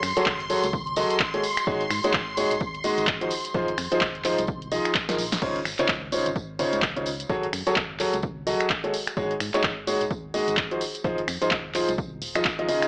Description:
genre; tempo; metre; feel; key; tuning
piano house; 128 BPM; 4/4; swing 59% on 16ths; Db major; A4 = 441 Hz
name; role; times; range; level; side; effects
string machine, violins; sustained chords; 0.0-5.4 s; C6; -30 LUFS; equal; ensemble chorus, sidechain pumping
organ-like FM bass; bass; 0.0-12.4 s; Eb1 to Ab2; -38 LUFS; equal; sidechain pumping
house drum kit; drums; 0.0-12.9 s; crash cymbal, finger snaps, handclaps, hi-hat, snare drum; -27 LUFS; equal; none
tambourine; percussion; 0.0-12.9 s; none; -38 LUFS; equal; none
clear concert grand piano; riff; 0.2-12.9 s; Db3 to Eb5; -25 LUFS; equal; sidechain pumping
electronic kick drum; drums; 0.3-12.6 s; none; -34 LUFS; equal; none
room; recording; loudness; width
light reverb; dry, gritty hardware recording, cassette tape, small speaker sound; -23 LUFS; side -38 dB against mid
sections
0.0-5.4 A section; 5.4-12.9 B section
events
drop 0.0-5.4; drum fill 5.1-5.4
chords
0.0 Gbmadd9; 1.4 Ab7sus4; 3.3 Fm7; 5.4 Dbmaj9; 7.3 Gbmadd9; 8.9 Ab7sus4; 10.8 Fm7

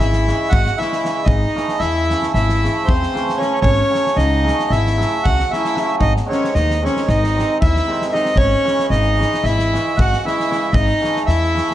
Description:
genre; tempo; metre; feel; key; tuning
balkan folk, Balkan wedding band; 228 BPM (eighths); 9/8; straight; unclear; A4 = 438 Hz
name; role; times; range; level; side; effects
accordion; melody; 0.0-11.7 s; B#4 to F#5; -20 LUFS; right 1 dB; plate reverb
rich violin; second line; 0.0-11.7 s; B#3 to F#4; -23 LUFS; left 2 dB; none
cimbalom; accompaniment; 0.0-11.7 s; B#2 to C#4; -23 LUFS; right 3 dB; none
upright bass; bass; 0.0-11.6 s; G#1 to E2; -18 LUFS; equal; none
loose indie drum kit; percussion; 0.0-11.7 s; kick drum, snare drum; -22 LUFS; equal; none
room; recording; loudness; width
moderate studio ambience, RT60 0.5 s; nothing above 10.7 kHz; -15 LUFS; side -13 dB against mid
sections
0.0-11.7 A section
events
none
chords
0.0 C#m/G#; 1.3 A/G#; 3.6 F#m/G#; 6.0 G#; 8.4 C#m/G#; 10.7 A/G#

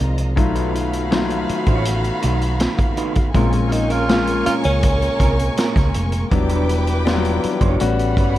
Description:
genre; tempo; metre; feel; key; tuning
lush 1970s-style soul; 81 BPM; 4/4; straight; unclear; A4 = 439 Hz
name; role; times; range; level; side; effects
warm studio violin section; second line; 0.0-8.4 s; G3 to D6; -27 LUFS; right 1 dB; none
warm concert grand piano; accompaniment; 0.0-8.4 s; F3 to F#4; -23 LUFS; left 5 dB; none
mellow tonewheel organ; sustained chords; 0.0-8.4 s; Bb2 to C#5; -30 LUFS; right 1 dB; slow rotary speaker
electric guitar through a small old amp; riff; 0.0-8.4 s; G3 to Db5; -29 LUFS; right 7 dB; vibrato effect
hollow-body short-scale fingered electric bass; bass; 0.0-8.4 s; E1 to Db2; -20 LUFS; equal; none
vintage drum kit; drums; 0.2-8.4 s; hi-hat, kick drum, snare drum; -21 LUFS; equal; none
breathy tenor saxophone; melody; 3.7-5.9 s; Db4 to F4; -22 LUFS; right 2 dB; none
room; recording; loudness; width
small room ambience; dark, warm production; -16 LUFS; side -14 dB against mid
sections
0.0-8.4 A section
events
none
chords
0.4 B7#11; 3.3 Bbm7; 6.3 Em9; 7.8 A13

